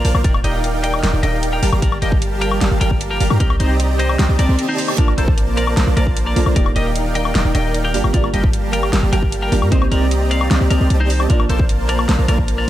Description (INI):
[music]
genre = future bass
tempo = 152 BPM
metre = 4/4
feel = half-time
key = G minor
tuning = A4 = 441 Hz
[part]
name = twelve-string electric guitar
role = melody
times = 0.0-12.7 s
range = D4 to G5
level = -25 LUFS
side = left 2 dB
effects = sidechain pumping, digital delay
[part]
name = airy breathy pad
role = sustained chords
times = 0.0-12.7 s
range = D3 to D5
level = -30 LUFS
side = left 2 dB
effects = chorus, sidechain pumping
[part]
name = dense compressed supersaw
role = riff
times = 0.0-12.7 s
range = G3 to C6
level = -22 LUFS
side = right 1 dB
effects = sidechain pumping
[part]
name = warm 808-style bass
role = bass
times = 0.0-12.7 s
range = Eb1 to G2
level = -18 LUFS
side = equal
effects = sidechain pumping
[part]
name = pop drum kit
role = drums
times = 0.0-12.6 s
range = hi-hat, snare drum, woodblock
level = -23 LUFS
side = left 2 dB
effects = none
[part]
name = electronic kick drum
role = drums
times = 0.2-12.5 s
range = none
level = -18 LUFS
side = equal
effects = none
[part]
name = reverse cymbal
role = sound effects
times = 4.4-5.0 s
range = none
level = -28 LUFS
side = right 6 dB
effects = none
[part]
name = soft round pluck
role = accompaniment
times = 5.0-12.7 s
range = Bb3 to A5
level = -25 LUFS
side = right 3 dB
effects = ensemble chorus, sidechain pumping, digital delay
[sound]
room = light reverb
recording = none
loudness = -14 LUFS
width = side -13 dB against mid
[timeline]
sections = 0.0-12.7 A section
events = reverse cymbal 4.4-5.0; break 4.6-5.0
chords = 0.2 Ebmaj7; 1.6 Gm7; 3.4 Cm7; 5.0 Bbmaj7; 6.6 Ebmaj7; 7.9 Gm7; 9.7 Cm7; 11.3 Bbmaj7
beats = | 0.24 0.64 1.03 1.43 | 1.82 2.22 2.61 3.01 | 3.40 3.80 4.19 4.59 | 4.98 5.38 5.77 6.17 | 6.56 6.96 7.35 7.74 | 8.14 8.53 8.93 9.32 | 9.72 10.11 10.51 10.90 | 11.30 11.69 12.09 12.48